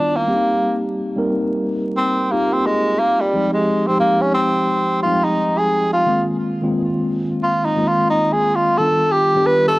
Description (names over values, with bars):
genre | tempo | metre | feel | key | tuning
R&B | 88 BPM | 4/4 | swing 63% on 16ths | Ab major | A4 = 440 Hz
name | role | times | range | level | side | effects
breathy tenor saxophone | melody | 0.0-9.8 s | G3 to B4 | -17 LUFS | equal | cassette tape
mellow tine electric piano | accompaniment | 0.0-9.8 s | Eb3 to G5 | -20 LUFS | equal | medium stereo tremolo, cassette tape
room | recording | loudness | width
wet studio ambience, RT60 0.5 s | home recording on cassette, vinyl crackle | -15 LUFS | side -20 dB against mid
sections
0.0-9.8 A section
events
tenor saxophone solo 0.0-9.8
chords
0.3 Cm7; 3.3 Fm9; 6.1 Ab6; 8.8 G7b13